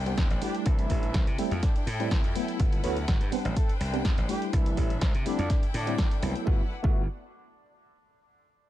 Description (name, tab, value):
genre	filtered disco house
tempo	124 BPM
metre	4/4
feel	swing 53% on 16ths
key	G major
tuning	A4 = 440 Hz
part	clear studio string section	sustained chords	0.0-6.7 s	D4 to G5	-39 LUFS	left 4 dB	sidechain pumping
part	glassy slap bass	bass	0.0-7.1 s	G1 to C3	-32 LUFS	equal	sidechain pumping
part	tine electric piano	accompaniment	0.1-7.0 s	F#3 to F#4	-32 LUFS	right 1 dB	medium stereo tremolo, phaser, sidechain pumping
part	punchy analog drum machine	drums	0.1-6.4 s	hi-hat, snare drum	-37 LUFS	equal	sidechain pumping on hats
part	electronic kick drum	drums	0.2-6.9 s	none	-26 LUFS	equal	none
part	mellow horn section	melody	0.4-6.2 s	D3 to A4	-38 LUFS	right 1 dB	sidechain pumping, dub echo
room	little or no reverb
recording	none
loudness	-25 LUFS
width	side -13 dB against mid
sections	0.0-6.5 A section; 6.5-8.4 B section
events	drop 0.0-6.5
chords	0.0 Am11; 0.7 C69; 1.4 Fmaj9; 2.6 Gmaj13; 3.3 Am11; 4.5 C69; 5.3 Fmaj9 (rootless); 6.5 Gmaj13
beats	0.18 | 0.66 1.15 1.63 2.11 | 2.60 3.08 3.56 4.05 | 4.53 5.02 5.50 5.98 | 6.47 6.95